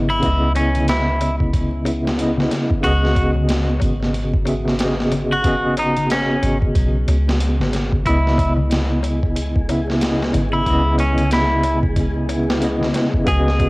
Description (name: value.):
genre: trip hop.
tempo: 92 BPM.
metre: 4/4.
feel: swing 60% on 16ths.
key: C# minor.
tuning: A4 = 437 Hz.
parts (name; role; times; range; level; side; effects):
tine electric piano; accompaniment; 0.0-13.7 s; C#3 to E5; -21 LUFS; equal; tremolo, tape echo.
soft 808-style bass; bass; 0.0-13.7 s; G#1 to C#2; -21 LUFS; equal; none.
semi-hollow electric guitar; melody; 0.1-13.7 s; C#4 to G#4; -22 LUFS; equal; cassette tape, tape echo.
darbuka; percussion; 0.1-13.7 s; none; -29 LUFS; left 3 dB; none.
boom bap sampler-style drum kit; drums; 0.2-13.7 s; hi-hat, kick drum, snare drum; -22 LUFS; equal; none.
wind-like tuned noise texture; texture; 8.9-13.7 s; G#3 to G#4; -31 LUFS; equal; built-in reverb.
room: little or no reverb.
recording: home recording on cassette, vinyl crackle.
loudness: -16 LUFS.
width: side -23 dB against mid.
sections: 0.0-13.7 A section.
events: none.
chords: 0.0 C#m9; 2.8 Emaj9; 8.1 C#m9.